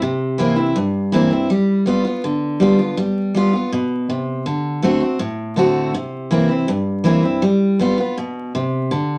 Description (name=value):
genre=rock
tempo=162 BPM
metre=4/4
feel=straight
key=G mixolydian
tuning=A4 = 440 Hz
part: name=picked steel-string acoustic guitar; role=solo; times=0.0-9.2 s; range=G2 to F#4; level=-19 LUFS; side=equal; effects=none
room=moderate studio reverb, RT60 0.5 s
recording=vinyl crackle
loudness=-19 LUFS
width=mono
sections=0.0-9.2 A section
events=none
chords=0.0 C7; 1.5 G7; 4.5 D7; 5.9 C7; 7.4 G7